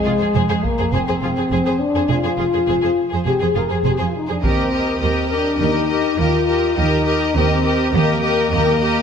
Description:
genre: cinematic, epic orchestral film score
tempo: 103 BPM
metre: 4/4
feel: straight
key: Eb major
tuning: A4 = 439 Hz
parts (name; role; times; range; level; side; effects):
- warm symphonic violin section; melody; 0.0-9.0 s; Ab4 to Eb5; -27 LUFS; left 5 dB; none
- mellow French horn section; sustained chords; 0.0-9.0 s; Ab3 to Bb4; -20 LUFS; left 3 dB; none
- rich symphonic violin section; second line; 0.1-9.0 s; F4 to Bb4; -24 LUFS; left 1 dB; none
- warm symphonic viola section; accompaniment; 0.1-9.0 s; G4 to Ab4; -25 LUFS; right 1 dB; none
- rich symphonic cello section; bass; 0.1-9.0 s; Eb2 to F2; -24 LUFS; right 4 dB; none
- warm symphonic double bass section; bass; 0.1-9.0 s; F1 to Eb2; -24 LUFS; right 4 dB; none
- solo taiko drums; drums; 0.6-0.9, 4.4-5.6 s; none; -25 LUFS; equal; none
room: moderate scoring stage reverb, RT60 1.6 s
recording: none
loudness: -16 LUFS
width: side -7 dB against mid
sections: 0.0-9.0 A section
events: none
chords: 0.0 Fm; 4.4 Eb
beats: 0.35 0.94 1.52 | 2.10 2.69 3.27 3.86 | 4.44 5.02 5.61 6.19 | 6.77 7.36 7.94 8.52

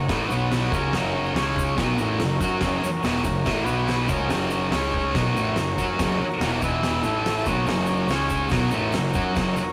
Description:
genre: garage rock duo or trio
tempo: 142 BPM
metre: 4/4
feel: straight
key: F# mixolydian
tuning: A4 = 436 Hz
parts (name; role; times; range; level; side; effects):
- combo organ; sustained chords; 0.0-9.7 s; B3 to F#5; -30 LUFS; equal; none
- thick fuzz guitar; riff; 0.0-9.6 s; E2 to F#4; -27 LUFS; equal; distortion
- growling picked electric bass; bass; 0.0-9.6 s; E1 to F#2; -32 LUFS; equal; overdrive
- oversized low-tuned drum kit; drums; 0.1-9.5 s; hi-hat, kick drum, snare drum; -30 LUFS; equal; none
- tube shaker; percussion; 0.1-9.7 s; none; -48 LUFS; equal; none
room: moderate small room reverb, RT60 0.5 s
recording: rough rehearsal-room recording, warm saturation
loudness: -23 LUFS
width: mono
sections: 0.0-9.7 A section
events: none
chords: 0.3 B5; 0.7 F#; 1.4 C#5; 1.8 F#; 3.7 B5; 4.1 F#; 4.7 C#5; 5.2 F#; 6.6 E5; 7.0 A5; 7.5 F#; 8.1 C#5; 8.5 F#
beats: 0.10 0.52 | 0.94 1.36 1.78 2.21 | 2.63 3.05 3.47 3.89 | 4.31 4.74 5.16 5.58 | 6.00 6.42 6.84 7.26 | 7.68 8.10 8.52 8.94 | 9.37

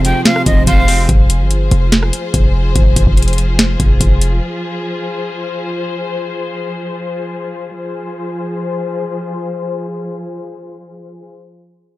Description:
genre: hip hop, trap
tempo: 144 BPM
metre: 4/4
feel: half-time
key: F minor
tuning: A4 = 437 Hz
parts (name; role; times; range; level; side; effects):
- electric guitar at the edge of break-up; accompaniment; 0.0-1.1 s; C3 to C5; -18 LUFS; right 2 dB; ensemble chorus
- dark studio string section; sustained chords; 0.0-11.2 s; F3 to C5; -22 LUFS; left 3 dB; low-pass filter
- hard-hitting 808-style bass; bass; 0.0-4.4 s; F1 to G1; -14 LUFS; equal; none
- booming analog drum machine; drums; 0.0-4.3 s; hi-hat, kick drum, rim click, snare drum; -12 LUFS; equal; none
- bright reedy jazz flute; melody; 0.1-1.1 s; Eb5 to G5; -19 LUFS; equal; tape echo
room: digital ambience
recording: none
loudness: -13 LUFS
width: side -17 dB against mid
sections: 0.0-1.1 A section; 1.1-7.8 B section; 7.8-11.1 C section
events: none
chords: 0.0 Fm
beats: 0.26 0.67 | 1.09 1.50 1.92 2.34 | 2.75 3.17 3.59 4.00 | 4.42 4.84 5.25 5.67 | 6.09 6.50 6.92 7.34 | 7.75 8.17 8.59 9.01 | 9.42 9.84 10.26 10.67

